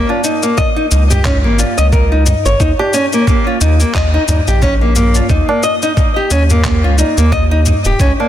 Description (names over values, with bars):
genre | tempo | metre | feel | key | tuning
organic downtempo | 89 BPM | 4/4 | swing 57% on 16ths | Eb mixolydian | A4 = 440 Hz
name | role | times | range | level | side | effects
nylon-string guitar | arpeggios | 0.0-8.3 s | Bb3 to Eb5 | -14 LUFS | left 1 dB | digital delay
round analog bass | bass | 0.0-8.1 s | Eb1 to Eb2 | -12 LUFS | equal | tube saturation
tabla | percussion | 0.1-8.3 s | none | -21 LUFS | right 1 dB | none
electronic cabasa and handclaps | drums | 0.2-8.1 s | none | -22 LUFS | left 2 dB | soft clipping on snare
electronic kick drum | drums | 0.6-8.1 s | none | -15 LUFS | equal | none
room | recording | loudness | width
light reverb | dense, heavily limited modern master | -10 LUFS | side -11 dB against mid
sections
0.0-8.3 A section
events
none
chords
0.0 Db; 2.6 Eb5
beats
0.58 1.25 1.93 | 2.60 3.28 3.95 4.62 | 5.30 5.97 6.65 7.32 | 8.00